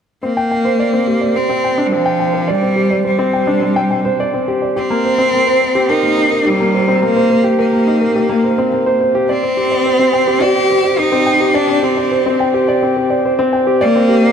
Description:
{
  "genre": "piano and strings electronica",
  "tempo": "106 BPM",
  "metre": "4/4",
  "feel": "straight",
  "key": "C minor",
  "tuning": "A4 = 435 Hz",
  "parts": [
    { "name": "rich cello", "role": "melody", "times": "0.2-14.3 s", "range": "F3 to G4", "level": "-15 LUFS", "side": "equal", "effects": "none" },
    { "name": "warm concert grand piano", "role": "riff", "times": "0.2-14.3 s", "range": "Bb3 to G5", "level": "-14 LUFS", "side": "equal", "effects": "none" }
  ],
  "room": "wet huge ambient reverb, RT60 4.8 s",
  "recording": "none",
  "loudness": "-12 LUFS",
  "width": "side -7 dB against mid",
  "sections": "0.2-14.3 A section",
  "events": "build-up 0.2-14.3",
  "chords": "0.2 Gsus4; 4.8 Cm7; 9.3 C5"
}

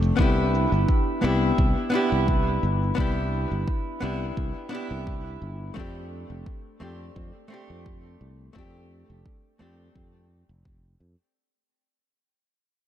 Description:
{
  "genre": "sunset chillout",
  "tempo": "86 BPM",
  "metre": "4/4",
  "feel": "swing 54% on 16ths",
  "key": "unclear",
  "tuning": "A4 = 441 Hz",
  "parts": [
    { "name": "hollow-body jazz guitar", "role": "accompaniment", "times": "0.0-10.3 s", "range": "A3 to G4", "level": "-27 LUFS", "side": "left 1 dB", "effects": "auto-pan, diffuse ambient delay" },
    { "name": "sustaining fretless electric bass", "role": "bass", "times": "0.0-11.1 s", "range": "F1 to F2", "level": "-26 LUFS", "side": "equal", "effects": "none" },
    { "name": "electronic hi-hat and cabasa", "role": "drums", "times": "0.0-11.3 s", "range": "none", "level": "-51 LUFS", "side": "equal", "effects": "none" },
    { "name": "electronic kick drum", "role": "drums", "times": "0.2-10.8 s", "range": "none", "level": "-26 LUFS", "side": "equal", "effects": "none" }
  ],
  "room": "moderate lush hall reverb, RT60 2.5 s",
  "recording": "dreamy mix soaked in reverb",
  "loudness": "-22 LUFS",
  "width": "side -10 dB against mid",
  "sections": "0.0-11.3 A section",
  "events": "fade-out 0.0-11.3",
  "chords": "0.2 Cmaj9; 5.8 F6"
}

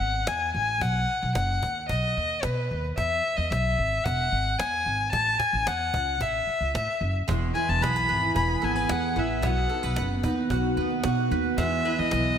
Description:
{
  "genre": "acoustic pop",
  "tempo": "112 BPM",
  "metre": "4/4",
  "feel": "straight",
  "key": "E major",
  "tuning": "A4 = 439 Hz",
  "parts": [
    { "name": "dark violin", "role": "melody", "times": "0.0-12.4 s", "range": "B4 to B5", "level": "-26 LUFS", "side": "left 2 dB", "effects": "none" },
    { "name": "upright bass", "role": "bass", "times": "0.0-12.3 s", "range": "E1 to B2", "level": "-29 LUFS", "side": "equal", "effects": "none" },
    { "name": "cajon", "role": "drums", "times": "0.0-12.3 s", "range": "none", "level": "-36 LUFS", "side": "right 1 dB", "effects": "none" },
    { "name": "fingerpicked steel-string acoustic guitar", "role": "accompaniment", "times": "7.3-12.4 s", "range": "E2 to G#4", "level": "-28 LUFS", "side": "right 2 dB", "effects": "double-tracked left and right" },
    { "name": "mandolin", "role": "arpeggios", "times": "7.3-12.4 s", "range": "G#3 to G#5", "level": "-34 LUFS", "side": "right 4 dB", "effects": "none" }
  ],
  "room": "moderate lush hall reverb, RT60 2.0 s, studio ambience",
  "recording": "bright 1980s-style digital production",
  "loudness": "-23 LUFS",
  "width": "side -8 dB against mid",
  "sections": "0.0-12.4 A section",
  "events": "none",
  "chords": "0.0 E; 0.8 B; 3.0 E; 5.1 A; 7.3 E; 9.4 B; 11.6 E"
}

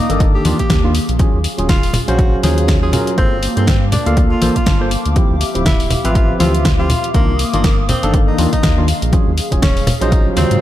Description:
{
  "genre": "deep house",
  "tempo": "121 BPM",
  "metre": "4/4",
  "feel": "swing 58% on 16ths",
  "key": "unclear",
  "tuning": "A4 = 440 Hz",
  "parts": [
    { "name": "breathy tenor saxophone", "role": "melody", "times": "0.0-10.6 s", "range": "Bb3 to Ab4", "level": "-23 LUFS", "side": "equal", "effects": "analog delay" },
    { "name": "hollow soft pad", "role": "sustained chords", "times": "0.0-10.6 s", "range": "Bb3 to Eb6", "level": "-24 LUFS", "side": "equal", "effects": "chorus, sidechain pumping" },
    { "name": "overdriven tine electric piano", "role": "stabs", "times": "0.1-10.6 s", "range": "Db3 to F5", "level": "-20 LUFS", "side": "equal", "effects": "sidechain pumping, analog delay" },
    { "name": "round analog bass", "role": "bass", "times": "0.1-10.6 s", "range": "D1 to Ab2", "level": "-18 LUFS", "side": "equal", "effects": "sidechain pumping" },
    { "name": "deep house drum kit", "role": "drums", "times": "0.1-10.6 s", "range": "hi-hat, snare drum", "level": "-22 LUFS", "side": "equal", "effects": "none" },
    { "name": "electronic kick drum", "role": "drums", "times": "0.2-10.2 s", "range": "none", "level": "-15 LUFS", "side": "equal", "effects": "none" },
    { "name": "congas", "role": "percussion", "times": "0.5-10.5 s", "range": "none", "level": "-23 LUFS", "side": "left 2 dB", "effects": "none" },
    { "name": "swell", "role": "sound effects", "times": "10.3-10.6 s", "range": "none", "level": "-24 LUFS", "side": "right 1 dB", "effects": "none" }
  ],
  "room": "light reverb",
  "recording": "none",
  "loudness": "-12 LUFS",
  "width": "side -13 dB against mid",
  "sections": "0.0-10.6 A section",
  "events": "swell 10.3-10.6",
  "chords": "0.0 Cm11 (rootless); 0.9 Ebm11; 3.2 Gm11; 5.2 Dm11; 7.1 Cm11; 8.9 Ebm11"
}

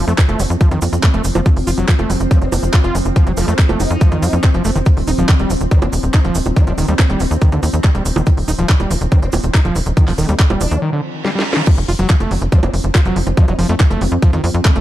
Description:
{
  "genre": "psychedelic trance",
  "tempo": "141 BPM",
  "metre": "4/4",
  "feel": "straight",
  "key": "unclear",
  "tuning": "A4 = 440 Hz",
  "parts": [
    { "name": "evolving wavetable pad", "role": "sustained chords", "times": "0.0-14.8 s", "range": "F3 to C4", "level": "-24 LUFS", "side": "equal", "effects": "chorus, built-in reverb, sidechain pumping" },
    { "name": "overdriven acid bass", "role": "riff", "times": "0.0-14.8 s", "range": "D3 to F4", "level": "-22 LUFS", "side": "equal", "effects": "distortion, auto-pan, cassette tape, sidechain pumping, digital delay" },
    { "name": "tight sequencer bass", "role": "bass", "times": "0.0-14.8 s", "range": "Eb1 to F2", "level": "-17 LUFS", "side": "equal", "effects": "none" },
    { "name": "garage drum kit", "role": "drums", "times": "0.1-14.8 s", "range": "bongos, crash cymbal, handclaps, hi-hat, snare drum", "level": "-22 LUFS", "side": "right 2 dB", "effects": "none" },
    { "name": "cabasa", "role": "percussion", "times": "0.1-10.8 s", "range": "none", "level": "-31 LUFS", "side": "right 4 dB", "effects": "none" },
    { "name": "electronic kick drum", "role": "drums", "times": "0.2-14.7 s", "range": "none", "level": "-12 LUFS", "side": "equal", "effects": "none" },
    { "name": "vowel-sweep wobble bass", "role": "second line", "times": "2.3-13.5 s", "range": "A3 to Eb4", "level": "-30 LUFS", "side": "left 2 dB", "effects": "chorus, sidechain pumping, high-pass filter, digital delay" },
    { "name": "reverse cymbal", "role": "sound effects", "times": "11.0-11.7 s", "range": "none", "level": "-26 LUFS", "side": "right 4 dB", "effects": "none" }
  ],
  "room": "digital ambience",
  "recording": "dark, warm production",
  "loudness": "-12 LUFS",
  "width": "side -14 dB against mid",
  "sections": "0.0-11.7 A section; 11.7-14.8 B section",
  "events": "break 10.8-11.7; reverse cymbal 11.0-11.7; drum fill 11.2-11.7; drop 11.7-14.8",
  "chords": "0.0 F5; 4.9 Eb69; 11.7 F5"
}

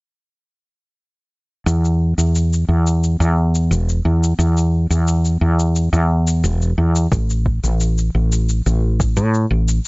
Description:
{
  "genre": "sunset chillout",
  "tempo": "88 BPM",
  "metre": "4/4",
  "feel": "straight",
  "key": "unclear",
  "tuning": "A4 = 441 Hz",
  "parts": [
    { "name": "woody fretless electric bass", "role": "bass", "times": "1.7-9.8 s", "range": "E1 to A2", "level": "-15 LUFS", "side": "equal", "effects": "none" },
    { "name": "cabasa", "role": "drums", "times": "1.7-9.9 s", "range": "none", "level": "-30 LUFS", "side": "left 4 dB", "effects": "overdrive" },
    { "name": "electronic kick drum", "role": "drums", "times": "7.1-9.1 s", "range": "none", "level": "-20 LUFS", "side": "equal", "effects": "overdrive" }
  ],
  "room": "little or no reverb",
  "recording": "dry, gritty hardware recording, nothing above 7.6 kHz",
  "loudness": "-15 LUFS",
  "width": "side -33 dB against mid",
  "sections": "1.7-9.9 A section",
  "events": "none",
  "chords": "none"
}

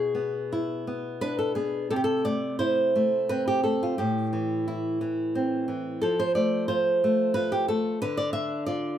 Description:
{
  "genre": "romantic piece for solo classical guitar",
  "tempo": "89 BPM",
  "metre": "3/4",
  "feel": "uneven beats, rubato",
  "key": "A minor",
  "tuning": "A4 = 441 Hz",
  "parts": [
    { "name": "nylon-string guitar", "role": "solo", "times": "0.0-9.0 s", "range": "A2 to E5", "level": "-24 LUFS", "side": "equal", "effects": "none" }
  ],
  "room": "light reverb",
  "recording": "band playing live in one room",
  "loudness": "-24 LUFS",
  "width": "side -10 dB against mid",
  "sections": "0.0-9.0 A section",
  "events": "none",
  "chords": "0.0 E7/B; 1.9 Am/C; 4.0 Am; 6.0 F; 8.0 Bdim/D"
}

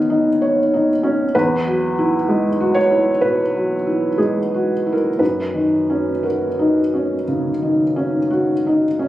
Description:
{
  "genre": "neoclassical minimalist piano",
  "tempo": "57-64 BPM",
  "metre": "4/4",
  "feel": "rubato",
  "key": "unclear",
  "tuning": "A4 = 440 Hz",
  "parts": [
    { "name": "felt-muted upright piano", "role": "solo", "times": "0.0-9.1 s", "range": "E2 to D#5", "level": "-16 LUFS", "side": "equal", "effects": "none" }
  ],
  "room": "moderate scoring stage reverb, RT60 1.5 s",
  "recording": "recorded on a phone in the room, club reverb, compression",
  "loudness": "-16 LUFS",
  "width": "side -14 dB against mid",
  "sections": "0.0-9.1 A section",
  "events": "none",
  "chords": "0.0 Badd9; 1.3 Eadd9; 5.2 F#6"
}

